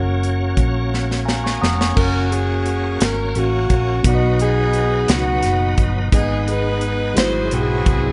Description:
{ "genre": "slow gospel", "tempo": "58 BPM (dotted quarters)", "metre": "6/8", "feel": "straight", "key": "F# major", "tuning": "A4 = 436 Hz", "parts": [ { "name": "bright tine electric piano", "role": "accompaniment", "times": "0.0-8.1 s", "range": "G#2 to D#6", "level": "-26 LUFS", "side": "equal", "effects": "none" }, { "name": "bright tonewheel organ", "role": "sustained chords", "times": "0.0-8.1 s", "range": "F#3 to A#5", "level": "-29 LUFS", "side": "equal", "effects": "slow rotary speaker, chorus vibrato" }, { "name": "hollow-body short-scale fingered electric bass", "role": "bass", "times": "0.0-8.1 s", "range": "E#1 to C#2", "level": "-23 LUFS", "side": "equal", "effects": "none" }, { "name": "crisp fusion drum kit", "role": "drums", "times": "0.2-8.0 s", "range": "crash cymbal, hi-hat, kick drum, snare drum", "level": "-22 LUFS", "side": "equal", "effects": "none" }, { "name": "clear saxophone section", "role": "melody", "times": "2.0-8.1 s", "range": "A#3 to B#4", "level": "-23 LUFS", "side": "equal", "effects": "slapback echo" } ], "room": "light reverb", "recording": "nothing above 10.9 kHz", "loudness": "-18 LUFS", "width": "mono", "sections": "0.0-2.0 A section; 2.0-8.1 B section", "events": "drum fill 0.9-2.0; tine electric piano fill 0.9-2.0", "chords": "0.0 F#; 4.0 B; 6.1 G#m; 7.2 G#7alt" }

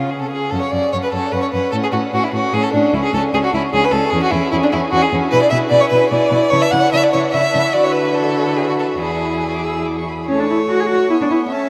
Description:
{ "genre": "quick classical-period movement for string quartet", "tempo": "148 BPM", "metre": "3/4", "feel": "rubato", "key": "F# minor, A major from 5.3 s", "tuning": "A4 = 440 Hz", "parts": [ { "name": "warm violin", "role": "melody", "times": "0.0-11.7 s", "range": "E#5 to E6", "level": "-32 LUFS", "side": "equal", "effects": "none" }, { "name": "rich violin", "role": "second line", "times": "0.0-11.7 s", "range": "D4 to F#5-20c", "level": "-19 LUFS", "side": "equal", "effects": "none" }, { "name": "warm viola", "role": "accompaniment", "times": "0.0-11.7 s", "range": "A3 to F#4", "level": "-24 LUFS", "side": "equal", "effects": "none" }, { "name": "warm cello", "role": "bass", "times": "0.0-11.7 s", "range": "C#2 to G#4", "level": "-24 LUFS", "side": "equal", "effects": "none" } ], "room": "wet huge ambient reverb, RT60 7.5 s", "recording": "in a vast, echoing space", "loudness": "-17 LUFS", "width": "mono", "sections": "0.5-10.3 A section; 10.3-11.7 B section", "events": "none", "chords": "0.0 C#; 0.5 F#5; 1.7 F#m/A; 2.9 C#5; 4.1 C#m/E; 5.3 E7/B; 6.5 A/C#; 7.7 Bm7/D; 9.0 E; 10.3 A" }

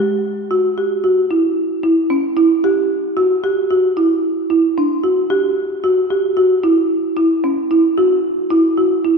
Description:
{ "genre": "contemporary instrumental, contemporary", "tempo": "112 BPM", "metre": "5/4", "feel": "straight", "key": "unclear", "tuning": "A4 = 440 Hz", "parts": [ { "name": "folk marimba with medium mallets", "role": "solo", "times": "0.0-9.2 s", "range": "C#4 to G4", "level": "-14 LUFS", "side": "right 1 dB", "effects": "none" } ], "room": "wet concert hall reverb, RT60 2.5 s", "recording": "minimal, uncompressed stereo recording", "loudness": "-14 LUFS", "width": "side -4 dB against mid", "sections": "0.0-9.2 A section", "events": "none", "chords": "none" }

